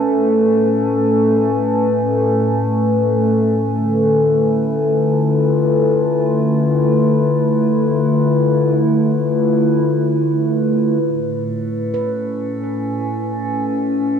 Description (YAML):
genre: ambient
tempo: free time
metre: none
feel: none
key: A major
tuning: A4 = 442 Hz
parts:
  - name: warbly tape-like pad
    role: sustained chords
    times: 0.0-14.2 s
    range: A2 to G#5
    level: -16 LUFS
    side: left 1 dB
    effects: chorus, built-in reverb, cassette tape
  - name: analog drone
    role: drone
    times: 0.0-14.2 s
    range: A3 to C#5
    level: -19 LUFS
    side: equal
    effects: chorus, cassette tape
  - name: drifting glass-harmonics texture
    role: texture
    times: 11.5-14.2 s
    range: A3 to A4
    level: -36 LUFS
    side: right 1 dB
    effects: chorus, built-in reverb, cassette tape
  - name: handpan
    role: arpeggios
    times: 11.9-13.8 s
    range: B4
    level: -29 LUFS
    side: right 5 dB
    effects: cassette tape, analog delay
room: wet spring reverb, RT60 1.3 s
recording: home recording on cassette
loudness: -14 LUFS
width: side -7 dB against mid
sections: 0.0-11.0 A section; 11.0-14.2 B section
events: filter sweep on ambient pad 0.0-11.0, 11.0-14.2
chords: 0.0 Amaj7; 3.7 Dm6; 11.0 Amaj7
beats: free time